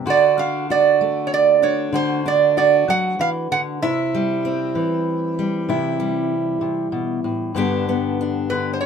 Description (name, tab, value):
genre	acoustic country blues, solo or duo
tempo	64 BPM (dotted quarters)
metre	12/8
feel	straight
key	unclear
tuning	A4 = 442 Hz
part	fingerpicked steel-string acoustic guitar	accompaniment	0.0-8.9 s	G2 to G4	-21 LUFS	left 2 dB	none
part	lap resonator guitar	melody	0.1-8.9 s	B4 to F#5	-17 LUFS	right 7 dB	none
room	light reverb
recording	minimal, uncompressed stereo recording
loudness	-17 LUFS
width	side -6 dB against mid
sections	0.0-8.9 A section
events	none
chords	0.1 D; 3.8 C; 7.6 G